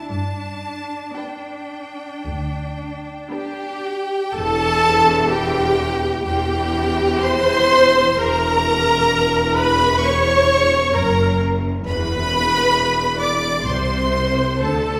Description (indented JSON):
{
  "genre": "classical, slow romantic movement for string orchestra",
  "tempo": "56-67 BPM",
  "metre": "4/4",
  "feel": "rubato",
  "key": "G major, E minor from 4.3 s",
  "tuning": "A4 = 440 Hz",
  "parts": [
    { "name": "clear studio violin section", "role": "melody", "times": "0.0-15.0 s", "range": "G5 to D6", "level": "-25 LUFS", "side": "equal", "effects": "none" },
    { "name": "rich studio cello section", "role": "bass", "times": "0.0-15.0 s", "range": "E2 to D4", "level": "-28 LUFS", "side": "equal", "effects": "none" },
    { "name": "rich chamber double bass section", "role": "bass", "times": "0.1-15.0 s", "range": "E1 to G2", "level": "-27 LUFS", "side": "equal", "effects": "none" },
    { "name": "rich chamber violin section", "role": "second line", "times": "1.2-15.0 s", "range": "G4 to D5", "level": "-23 LUFS", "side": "equal", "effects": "none" },
    { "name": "rich studio viola section", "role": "accompaniment", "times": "1.2-15.0 s", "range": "B3 to D5", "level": "-24 LUFS", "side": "equal", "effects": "none" }
  ],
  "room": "wet recital hall reverb, RT60 1.6 s",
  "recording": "recorded in a church or concert hall",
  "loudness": "-18 LUFS",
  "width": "mono",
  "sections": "0.0-4.3 A section; 4.3-15.0 B section",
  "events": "none",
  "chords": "0.1 G; 4.3 Em; 8.2 F#7/E; 11.9 E5; 13.7 N.C."
}